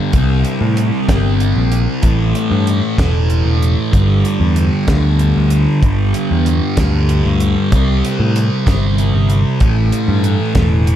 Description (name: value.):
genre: psychedelic rock.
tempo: 63 BPM (dotted quarters).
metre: 6/8.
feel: straight.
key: unclear.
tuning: A4 = 440 Hz.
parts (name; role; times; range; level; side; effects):
thick fuzz guitar; riff; 0.0-11.0 s; G2 to C4; -16 LUFS; equal; distortion, phaser, dub echo.
picked electric bass; bass; 0.1-11.0 s; E1 to A2; -14 LUFS; equal; none.
damped 70s drum kit; drums; 0.1-11.0 s; hi-hat, kick drum, snare drum; -17 LUFS; equal; none.
room: small room ambience.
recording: echo-heavy mix.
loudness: -12 LUFS.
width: side -11 dB against mid.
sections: 0.0-11.0 A section.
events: none.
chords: 0.1 C5; 2.0 A5; 3.9 G5; 7.7 C5; 9.6 A5.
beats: | 0.14 1.09 | 2.04 2.98 | 3.93 4.88 | 5.83 6.78 | 7.72 8.67 | 9.62 10.56.